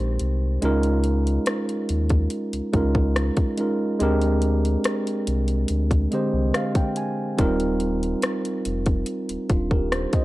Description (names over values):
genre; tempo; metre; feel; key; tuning
contemporary R&B; 71 BPM; 4/4; straight; Eb major; A4 = 440 Hz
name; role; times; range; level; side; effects
mellow tine electric piano; accompaniment; 0.0-10.2 s; D3 to Ab5; -24 LUFS; right 1 dB; none
sub bass with octave; bass; 0.0-10.1 s; Eb1 to Eb2; -23 LUFS; equal; none
trap drum kit; drums; 0.2-10.2 s; hi-hat, kick drum, rim click; -24 LUFS; equal; vintage 12-bit sampler grit
room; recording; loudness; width
digital ambience; dry, gritty hardware recording, transformer saturation; -20 LUFS; side -18 dB against mid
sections
0.0-10.2 A section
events
break 0.0-0.6; kick muted 0.6-1.5; tine electric piano fill 5.7-7.4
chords
0.0 Abmaj7; 0.6 Db69; 4.0 Bb13; 7.4 Eb69